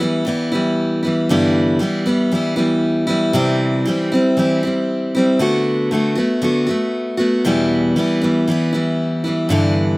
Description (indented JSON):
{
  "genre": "country",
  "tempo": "117 BPM",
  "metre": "4/4",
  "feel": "straight",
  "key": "G major",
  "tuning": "A4 = 437 Hz",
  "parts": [
    { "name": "picked steel-string acoustic guitar", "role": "solo", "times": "0.0-10.0 s", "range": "E2 to F#4", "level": "-15 LUFS", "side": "equal", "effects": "none" }
  ],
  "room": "light reverb",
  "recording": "recorded outdoors, with no room sound",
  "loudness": "-15 LUFS",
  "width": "side -22 dB against mid",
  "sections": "0.0-1.3 A section; 1.3-10.0 B section",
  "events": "none",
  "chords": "0.0 Em; 1.3 G6; 3.4 C; 5.4 D6; 7.5 Em",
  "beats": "0.27 0.78 | 1.30 1.81 2.32 2.84 | 3.35 3.86 4.38 4.89 | 5.40 5.92 6.43 6.94 | 7.46 7.97 8.48 8.99 | 9.51"
}